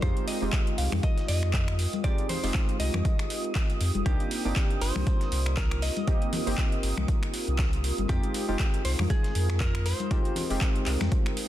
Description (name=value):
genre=deep house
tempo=119 BPM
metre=4/4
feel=swing 57% on 16ths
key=unclear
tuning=A4 = 443 Hz
part: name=direct-recorded clean electric guitar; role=melody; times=0.0-11.5 s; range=G4 to F5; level=-37 LUFS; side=equal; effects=ping-pong delay
part: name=warm analog keys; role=stabs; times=0.0-11.5 s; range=Ab3 to G4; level=-34 LUFS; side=right 1 dB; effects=chorus, sidechain pumping, ping-pong delay
part: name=warm sub bass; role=bass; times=0.0-11.1 s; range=F1 to F2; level=-28 LUFS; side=equal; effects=sidechain pumping
part: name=deep house drum kit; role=drums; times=0.0-11.5 s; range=finger snaps, handclaps, hi-hat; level=-35 LUFS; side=equal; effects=overdrive
part: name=dusty soul sampler-style drum kit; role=drums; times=0.0-11.5 s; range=hi-hat, snare drum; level=-45 LUFS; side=left 1 dB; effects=none
part: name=electronic kick drum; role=drums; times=0.0-11.2 s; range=none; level=-27 LUFS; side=equal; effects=overdrive
part: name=airy breathy pad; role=texture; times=0.0-11.5 s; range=F4 to Eb6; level=-38 LUFS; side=right 1 dB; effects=chorus, sidechain pumping
part: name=congas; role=percussion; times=0.9-11.1 s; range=none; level=-35 LUFS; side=left 6 dB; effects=none
room=little or no reverb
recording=dense, heavily limited modern master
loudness=-24 LUFS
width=side -13 dB against mid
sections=0.0-11.5 A section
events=none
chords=0.0 Fm9; 4.1 Cm9; 8.1 Fm9